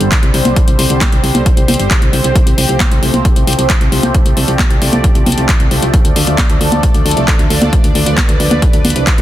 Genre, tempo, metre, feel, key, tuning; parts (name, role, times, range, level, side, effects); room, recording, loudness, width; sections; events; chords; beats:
uplifting trance; 134 BPM; 4/4; straight; A4 = 441 Hz
supersaw pad; sustained chords; 0.0-9.2 s; D3 to D5; -17 LUFS; equal; phaser, sidechain pumping, low-pass filter
solid FM bass; bass; 0.0-9.2 s; G1 to D2; -15 LUFS; equal; sidechain pumping
big-room dance drum kit; drums; 0.0-9.2 s; congas, handclaps, hi-hat; -16 LUFS; left 1 dB
electronic kick drum; drums; 0.1-9.2 s; -12 LUFS; equal
digital ambience; dense, heavily limited modern master; -9 LUFS; side -13 dB against mid
0.0-9.2 A section
0.0 Csus2; 2.4 Fadd9/C; 5.9 Dm
0.12 | 0.56 1.01 1.46 1.91 | 2.35 2.80 3.25 3.70 | 4.15 4.59 5.04 5.49 | 5.94 6.38 6.83 7.28 | 7.73 8.18 8.62 9.07